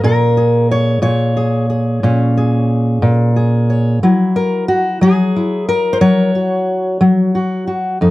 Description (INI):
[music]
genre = acoustic country blues, solo or duo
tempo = 60 BPM (dotted quarters)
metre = 12/8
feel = straight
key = unclear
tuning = A4 = 443 Hz
[part]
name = fingerpicked steel-string acoustic guitar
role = solo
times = 0.0-8.1 s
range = F2 to Db5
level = -12 LUFS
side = equal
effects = none
[sound]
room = light reverb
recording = dry, close 1970s-style studio recording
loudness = -12 LUFS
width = side -18 dB against mid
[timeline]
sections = 0.0-8.1 A section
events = none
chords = 0.0 Bbm7; 4.0 Gb7